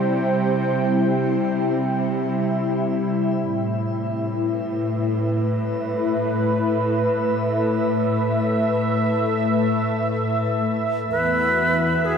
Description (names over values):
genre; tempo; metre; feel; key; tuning
ambient; free time; none; none; unclear; A4 = 441 Hz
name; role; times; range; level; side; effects
warm analog pad; sustained chords; 0.0-12.2 s; A2 to G5; -20 LUFS; equal; chorus, shimmer reverb
rich symphonic cello section; bass; 0.0-12.2 s; E2 to C3; -28 LUFS; equal; none
bright reedy alto flute; melody; 11.1-12.2 s; G#4 to B4; -19 LUFS; left 1 dB; shimmer reverb, ping-pong delay
room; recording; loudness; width
wet huge ambient reverb, RT60 8.9 s; none; -19 LUFS; side -6 dB against mid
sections
0.0-12.2 A section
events
none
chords
0.0 C; 3.5 Asus2; 11.1 Esus2